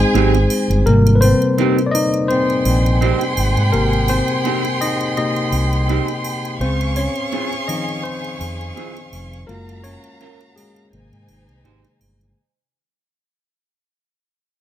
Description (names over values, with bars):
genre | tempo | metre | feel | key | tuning
lush 1970s-style soul | 84 BPM | 4/4 | swing 54% on 16ths | Ab major | A4 = 435 Hz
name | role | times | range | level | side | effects
warm studio violin section | second line | 0.0-12.3 s | Eb4 to Db6 | -24 LUFS | right 1 dB | none
tine electric piano | accompaniment | 0.0-12.4 s | C3 to Eb5 | -19 LUFS | left 2 dB | overdrive
electric guitar through a small old amp | riff | 0.1-11.8 s | C4 to C5 | -22 LUFS | right 6 dB | wide subtle chorus
overdriven fingered electric bass | bass | 0.1-12.3 s | F1 to Ab2 | -17 LUFS | right 1 dB | none
triangle | percussion | 0.2-12.4 s | none | -30 LUFS | right 7 dB | none
room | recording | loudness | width
light reverb, small room ambience | none | -15 LUFS | side -12 dB against mid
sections
0.9-12.4 A section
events
fade-out 0.9-12.4; tine electric piano solo 0.9-12.4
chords
0.0 Abmaj7; 6.6 Dbmaj7; 9.5 Gbmaj7; 10.9 Abmaj7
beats
0.15 | 0.86 1.58 2.30 3.02 | 3.73 4.45 5.17 5.89 | 6.61 7.33 8.05 8.77 | 9.49 10.21 10.93 11.65